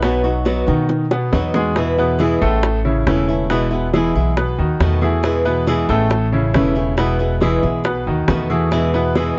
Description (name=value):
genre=latin, Cuban son and guajira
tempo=138 BPM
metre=4/4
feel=straight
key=E major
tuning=A4 = 440 Hz
part: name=flamenco guitar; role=accompaniment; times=0.0-9.4 s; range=B2 to F#4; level=-23 LUFS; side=equal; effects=none
part: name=clear concert grand piano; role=arpeggios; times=0.0-9.3 s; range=A2 to B4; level=-22 LUFS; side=equal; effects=none
part: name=upright bass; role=bass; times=0.0-9.3 s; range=E1 to B2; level=-23 LUFS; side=equal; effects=none
part: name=bongos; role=percussion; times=0.0-9.4 s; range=none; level=-24 LUFS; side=equal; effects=none
room=light reverb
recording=dark, warm production, nothing above 7.8 kHz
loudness=-17 LUFS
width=mono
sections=0.0-1.8 A section; 1.8-9.4 B section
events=drum fill 0.9-1.8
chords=0.0 B; 1.8 E; 2.6 A; 3.5 E; 4.4 B7; 5.2 E; 6.1 A; 7.0 E; 7.9 B7; 8.7 E